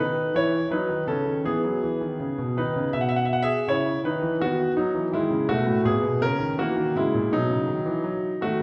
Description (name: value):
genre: classical, baroque-style suite movement for grand piano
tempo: 82 BPM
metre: 4/4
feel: rubato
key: E major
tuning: A4 = 439 Hz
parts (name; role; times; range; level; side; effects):
- clear concert grand piano; solo; 0.0-8.6 s; A2 to F#5; -25 LUFS; equal; none
room: wet recital hall reverb, RT60 1.4 s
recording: heard from further back in the room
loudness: -25 LUFS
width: mono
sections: 0.0-8.6 A section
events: none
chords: 0.0 C#m11; 1.4 E; 4.4 B/D#; 5.8 C#m13/A#; 7.3 B